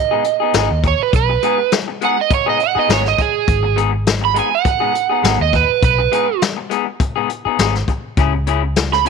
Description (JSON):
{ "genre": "straight-eighth soul blues", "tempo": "102 BPM", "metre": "4/4", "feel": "swing 53% on 16ths", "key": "G# minor", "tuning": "A4 = 439 Hz", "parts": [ { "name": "overdriven slide guitar", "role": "second line", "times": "0.0-9.1 s", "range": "G#4 to B5", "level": "-16 LUFS", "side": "right 16 dB", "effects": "none" }, { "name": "electric guitar through a small old amp", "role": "stabs", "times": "0.1-9.1 s", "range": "C#3 to G#4", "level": "-21 LUFS", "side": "left 15 dB", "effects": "none" }, { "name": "vintage brush drum kit", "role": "drums", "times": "0.2-9.1 s", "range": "hi-hat, kick drum, snare drum", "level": "-19 LUFS", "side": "left 3 dB", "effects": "none" }, { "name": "vintage muted fingered electric bass", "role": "bass", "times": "0.5-9.1 s", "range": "G#1 to D#2", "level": "-19 LUFS", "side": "equal", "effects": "none" } ], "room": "light reverb, small room ambience", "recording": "1960s-style stereo with parts hard left and right", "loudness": "-14 LUFS", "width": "side -5 dB against mid", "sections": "0.0-9.1 A section", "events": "electric slide guitar solo 0.0-9.1", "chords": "0.0 G#m; 8.2 C#m" }